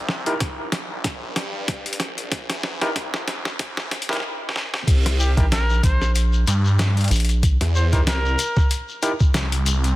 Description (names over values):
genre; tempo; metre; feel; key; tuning
glitch hop; 94 BPM; 4/4; swing 56% on 16ths; unclear; A4 = 445 Hz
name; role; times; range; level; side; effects
phased detuned saw bass; bass; 0.0-10.0 s; Bb1 to G2; -22 LUFS; equal; phaser, high-pass filter
boom bap sampler-style drum kit; drums; 0.1-10.0 s; crash cymbal, hi-hat, snare drum; -26 LUFS; equal; soft clipping on snare
overdriven tine electric piano; stabs; 0.3-9.1 s; D#4 to Bb4; -29 LUFS; equal; sidechain pumping, dub echo
electronic kick drum; drums; 0.4-9.3 s; none; -19 LUFS; equal; none
shekere; percussion; 4.9-10.0 s; none; -31 LUFS; left 5 dB; none
warm trumpet; melody; 5.2-8.7 s; G4 to C5; -27 LUFS; equal; vintage 12-bit sampler grit, dub echo
rubbery square bass; bass; 5.4-7.6 s; Bb1; -19 LUFS; equal; none
room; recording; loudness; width
light reverb; dense, heavily limited modern master, high-pass filter; -19 LUFS; side -17 dB against mid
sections
0.0-4.9 A section; 4.9-10.0 B section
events
build-up 0.0-4.9; drum fill 0.0-4.2, 4.4-4.9; filter sweep 0.0-4.9; drop 4.9-10.0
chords
0.0 C7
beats
0.41 1.04 1.68 | 2.32 2.96 3.60 4.24 | 4.88 5.51 6.15 6.79 | 7.43 8.07 8.71 9.34